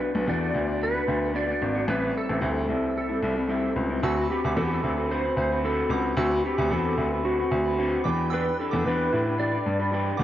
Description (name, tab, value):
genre	indie pop, bedroom pop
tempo	112 BPM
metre	4/4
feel	swing 55% on 16ths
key	unclear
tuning	A4 = 441 Hz
part	clean lap steel guitar	melody	0.0-9.9 s	F#4 to D5	-28 LUFS	right 1 dB	ensemble chorus, analog delay
part	electric guitar through a small old amp	accompaniment	0.0-10.2 s	A2 to B4	-28 LUFS	left 1 dB	wide subtle chorus, warbly pitch drift
part	clear baby grand piano	bass	0.1-10.2 s	G#1 to A2	-27 LUFS	left 1 dB	none
part	soft synth bell	second line	4.0-10.2 s	F#5 to E6	-36 LUFS	right 7 dB	lush chorus, analog delay
room	light reverb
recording	echo-heavy mix, cassette tape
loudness	-23 LUFS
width	side -12 dB against mid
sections	0.0-4.0 A section; 4.0-10.2 B section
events	none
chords	0.0 Bm7; 1.9 Am7; 4.0 D13; 8.0 Em7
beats	0.27 0.81 1.34 | 1.88 2.41 2.95 3.49 | 4.02 4.56 5.09 5.63 | 6.17 6.70 7.24 7.78 | 8.31 8.85 9.38 9.92